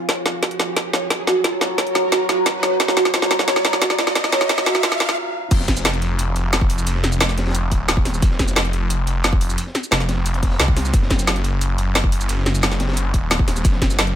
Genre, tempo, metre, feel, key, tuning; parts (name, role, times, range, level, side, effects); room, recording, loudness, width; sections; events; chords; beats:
dark technical drum and bass; 177 BPM; 4/4; straight; F phrygian; A4 = 440 Hz
deep dark ambient pad; sustained chords; 0.0-5.1 s; Gb4 to Bb5; -24 LUFS; right 2 dB; chorus, built-in reverb, sidechain pumping
riser; sound effects; 0.0-5.2 s; -28 LUFS; right 1 dB
soft round pluck; arpeggios; 0.1-4.9 s; F4 to Db5; -23 LUFS; right 1 dB; lush chorus, sidechain pumping, digital delay
drum and bass drum kit; drums; 0.1-14.1 s; crash cymbal, hi-hat, shaker, snare drum; -20 LUFS; equal; overdrive
electronic kick drum; drums; 0.1-13.9 s; -18 LUFS; equal; high-pass filter on kick, high-pass filter on room
snarling distorted saw bass; bass; 5.5-14.2 s; Eb1 to C2; -20 LUFS; equal; distortion, tube saturation, sidechain pumping
crunchy breakbeat drum kit; drums; 5.5-14.2 s; hi-hat, snare drum; -31 LUFS; equal; high-pass filter on hats, high-pass filter on snare, high-pass filter on room
light reverb; high-pass filter; -16 LUFS; side -10 dB against mid
0.0-5.5 A section; 5.5-14.2 B section
build-up 0.0-5.5; drum fill 0.0-5.2; riser 0.0-5.2; stop 5.2-5.5; drop 5.5-14.2
0.1 Gb; 5.5 F5; 10.9 Gb5
| 0.09 0.43 0.77 1.10 | 1.44 1.78 2.12 2.46 | 2.80 3.14 3.48 3.82 | 4.16 4.50 4.83 5.17 | 5.51 5.85 6.19 6.53 | 6.87 7.21 7.55 7.88 | 8.22 8.56 8.90 9.24 | 9.58 9.92 10.26 10.60 | 10.94 11.28 11.61 11.95 | 12.29 12.63 12.97 13.31 | 13.65 13.99